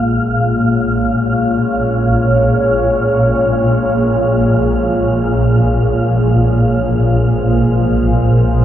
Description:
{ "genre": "dark ambient drone", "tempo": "free time", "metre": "none", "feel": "none", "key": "Bb minor", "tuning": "A4 = 439 Hz", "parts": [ { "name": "deep dark ambient pad", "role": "sustained chords", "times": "0.0-8.6 s", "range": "Bb3 to Db5", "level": "-16 LUFS", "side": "equal", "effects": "chorus, built-in reverb" }, { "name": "swarming drone", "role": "drone", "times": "0.0-8.6 s", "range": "Bb1 to Bb2", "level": "-14 LUFS", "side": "equal", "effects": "built-in reverb, wide subtle chorus" }, { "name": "wind-like tuned noise texture", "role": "texture", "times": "0.0-8.6 s", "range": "F4 to F5", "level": "-21 LUFS", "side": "left 1 dB", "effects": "built-in reverb, analog chorus" } ], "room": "wet huge ambient reverb, RT60 8.1 s", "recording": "dreamy mix soaked in reverb", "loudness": "-11 LUFS", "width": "side -11 dB against mid", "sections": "0.0-8.6 A section", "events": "fade-out on ambient pad 0.0-8.6; fade-out on synth texture 0.0-8.6; filter sweep on synth drone 0.0-8.6", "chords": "0.0 Bbm7" }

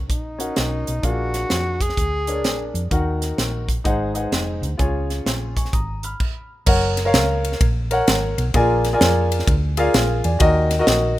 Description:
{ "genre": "uptempo gospel", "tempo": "128 BPM", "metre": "4/4", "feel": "swing 65% on 8ths", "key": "F# major", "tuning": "A4 = 438 Hz", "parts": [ { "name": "hollow-body short-scale fingered electric bass", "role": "bass", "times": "0.0-11.2 s", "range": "E#1 to E#2", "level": "-23 LUFS", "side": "equal", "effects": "none" }, { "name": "breathy tenor saxophone", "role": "melody", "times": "0.1-2.8 s", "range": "D#4 to G#4", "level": "-26 LUFS", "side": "equal", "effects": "none" }, { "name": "crisp fusion drum kit", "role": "drums", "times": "0.1-11.0 s", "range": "crash cymbal, hi-hat, kick drum, ride cymbal, snare drum", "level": "-21 LUFS", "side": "equal", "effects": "none" }, { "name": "warm grand piano", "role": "accompaniment", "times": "0.4-11.2 s", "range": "G#2 to E#6", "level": "-22 LUFS", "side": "left 1 dB", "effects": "none" } ], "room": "studio ambience", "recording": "rough home demo mix", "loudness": "-18 LUFS", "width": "side -15 dB against mid", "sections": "0.0-6.7 A section; 6.7-11.2 B section", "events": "stop 6.2-6.7", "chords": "0.0 F#; 1.0 A#7; 2.9 D#m; 3.9 G#7; 4.8 C#; 6.7 F#; 8.5 A#7; 10.4 D#m" }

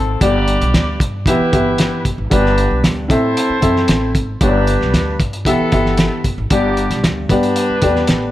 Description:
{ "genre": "uptempo 1960s-style soul", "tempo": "114 BPM", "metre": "4/4", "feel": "straight", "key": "G major", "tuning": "A4 = 440 Hz", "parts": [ { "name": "upright bass", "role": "bass", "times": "0.0-8.3 s", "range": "E1 to A2", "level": "-20 LUFS", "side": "equal", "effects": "none" }, { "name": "mellow saxophone section", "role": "second line", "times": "0.2-8.3 s", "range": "B3 to D5", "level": "-20 LUFS", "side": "equal", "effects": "none" }, { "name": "dark upright piano", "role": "accompaniment", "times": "0.2-8.3 s", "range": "G2 to E5", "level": "-17 LUFS", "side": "left 1 dB", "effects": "none" }, { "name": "cloth-damped thuddy drum kit", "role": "drums", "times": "0.2-8.2 s", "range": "hi-hat, kick drum, snare drum", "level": "-17 LUFS", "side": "equal", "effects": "none" } ], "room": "light reverb", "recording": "none", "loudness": "-13 LUFS", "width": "side -14 dB against mid", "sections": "0.0-8.3 A section", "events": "none", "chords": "0.2 G; 1.3 Em; 2.3 G; 3.1 Am; 4.4 G; 5.5 Em; 6.5 G" }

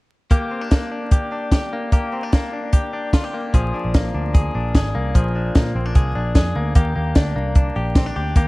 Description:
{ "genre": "jangly indie pop", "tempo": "149 BPM", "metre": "4/4", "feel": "straight", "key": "unclear", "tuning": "A4 = 441 Hz", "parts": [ { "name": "direct-recorded clean electric guitar", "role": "arpeggios", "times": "0.3-8.5 s", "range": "F3 to Ab4", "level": "-24 LUFS", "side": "left 2 dB", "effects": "spring reverb" }, { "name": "compact cocktail drum kit", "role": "drums", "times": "0.3-8.5 s", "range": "hi-hat, kick drum, snare drum", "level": "-16 LUFS", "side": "equal", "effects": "none" }, { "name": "vintage muted picked electric bass", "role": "bass", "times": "3.5-8.5 s", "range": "Ab1 to Bb2", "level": "-22 LUFS", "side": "equal", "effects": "none" } ], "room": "light reverb, studio reverb", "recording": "dark, warm production, vinyl crackle", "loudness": "-17 LUFS", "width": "side -22 dB against mid", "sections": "0.3-6.8 A section; 6.8-8.5 B section", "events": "none", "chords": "0.3 Bb6; 3.5 Bb7; 6.8 Ebmaj7" }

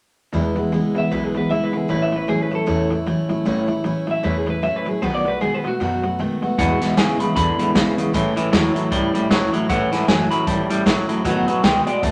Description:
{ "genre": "rockabilly", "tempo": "154 BPM", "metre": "4/4", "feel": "swing 58% on 8ths", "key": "E major", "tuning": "A4 = 440 Hz", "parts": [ { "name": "picked steel-string acoustic guitar", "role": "accompaniment", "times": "0.3-12.1 s", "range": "E2 to F#4", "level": "-24 LUFS", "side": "equal", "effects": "none" }, { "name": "twangy electric guitar", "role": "riff", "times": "0.3-12.1 s", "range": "E2 to A3", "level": "-26 LUFS", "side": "equal", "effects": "none" }, { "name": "upright bass", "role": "bass", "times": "0.3-12.1 s", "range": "F#1 to A2", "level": "-32 LUFS", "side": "equal", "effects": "none" }, { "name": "electric guitar through a small old amp", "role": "melody", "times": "1.0-12.1 s", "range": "F#4 to B5", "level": "-25 LUFS", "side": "equal", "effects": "none" }, { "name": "vintage drum kit", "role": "drums", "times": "6.6-12.1 s", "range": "hi-hat, kick drum, snare drum", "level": "-23 LUFS", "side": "equal", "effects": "none" } ], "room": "wet studio reverb, RT60 0.6 s", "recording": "none", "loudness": "-20 LUFS", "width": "mono", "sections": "0.3-6.6 A section; 6.6-12.1 B section", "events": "none", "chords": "0.3 E; 1.9 A; 5.0 B7; 6.6 E; 8.1 A; 11.2 B7" }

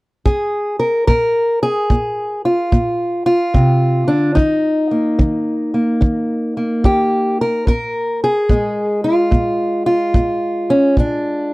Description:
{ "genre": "acoustic country blues, solo or duo", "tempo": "73 BPM", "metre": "4/4", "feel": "swing 66% on 8ths", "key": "Bb mixolydian", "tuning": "A4 = 439 Hz", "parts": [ { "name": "fingerpicked acoustic archtop guitar", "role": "melody", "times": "0.3-11.5 s", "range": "Bb2 to Bb4", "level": "-15 LUFS", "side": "equal", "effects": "none" }, { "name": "kick drum", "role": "drums", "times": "0.3-11.2 s", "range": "none", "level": "-15 LUFS", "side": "equal", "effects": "none" } ], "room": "little or no reverb", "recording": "dry, close 1970s-style studio recording", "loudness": "-14 LUFS", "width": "side -22 dB against mid", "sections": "0.0-1.1 A section; 1.1-11.5 B section", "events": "none", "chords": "0.0 N.C.; 1.1 Bb7(no3); 4.4 Eb5; 7.7 Bb7(no3)" }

